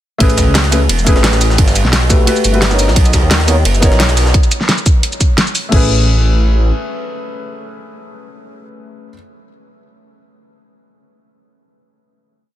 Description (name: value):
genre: liquid drum and bass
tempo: 174 BPM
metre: 4/4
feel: straight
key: A major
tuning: A4 = 440 Hz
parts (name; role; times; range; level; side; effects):
- felt-muted upright piano; accompaniment; 0.2-9.2 s; A3 to C#5; -19 LUFS; left 1 dB; ping-pong delay
- swelling detuned saw bass; bass; 0.2-6.7 s; E1 to D#2; -13 LUFS; equal; none
- electronic kick drum; drums; 0.2-5.8 s; none; -12 LUFS; equal; studio reverb
- jungle sampler-style drum kit; drums; 0.2-4.3 s; ride cymbal, snare drum; -19 LUFS; right 1 dB; high-pass filter on cymbals, studio reverb, high-pass filter on snare, high-pass filter on room
- pop drum kit; drums; 0.2-5.8 s; crash cymbal, hi-hat, shaker, snare drum; -16 LUFS; equal; studio reverb
room: little or no reverb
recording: dense, heavily limited modern master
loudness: -10 LUFS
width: side -13 dB against mid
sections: 0.2-5.7 drop; 5.7-8.5 final chord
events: drop 0.2-5.7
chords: 0.2 Amaj9; 1.6 Gmaj9; 2.8 Bmaj9; 4.3 N.C.; 5.7 Amaj9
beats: | 0.20 0.55 0.90 1.24 | 1.58 1.93 2.27 2.62 | 2.96 3.31 3.65 4.00 | 4.34 4.69 5.03 5.38 | 5.72 6.07 6.41 6.76 | 7.10 7.45 7.79 8.14